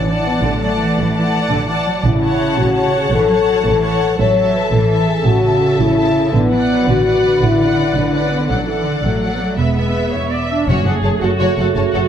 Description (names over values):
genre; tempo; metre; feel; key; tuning
cinematic; 112 BPM (dotted quarters); 12/8; straight; unclear; A4 = 441 Hz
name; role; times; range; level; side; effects
dark symphonic violin section; melody; 0.0-12.0 s; C#5 to A5; -24 LUFS; left 4 dB; none
rich studio violin section; second line; 0.0-12.0 s; F#4 to F#5; -25 LUFS; left 2 dB; none
dark symphonic viola section; accompaniment; 0.0-12.1 s; C#4 to E5; -23 LUFS; right 3 dB; none
mellow French horn section; sustained chords; 0.0-10.1 s; G#3 to C#5; -17 LUFS; left 3 dB; none
rich studio double bass section; bass; 0.0-12.0 s; E1 to A1; -20 LUFS; right 2 dB; none
warm symphonic cello section; bass; 0.0-12.0 s; F#2 to B3; -21 LUFS; right 2 dB; none
warm trombone section; sustained chords; 10.7-12.1 s; C#3 to A3; -23 LUFS; right 2 dB; none
timpani; percussion; 10.7-11.2 s; F#2; -21 LUFS; equal; none
room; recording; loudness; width
moderate scoring stage reverb, RT60 2.0 s; none; -13 LUFS; side -9 dB against mid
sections
0.0-10.7 A section; 10.7-12.1 B section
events
none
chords
0.0 D/A; 2.0 F#m7/A; 6.3 Bm/A; 8.5 D/A; 9.6 E; 10.7 F#m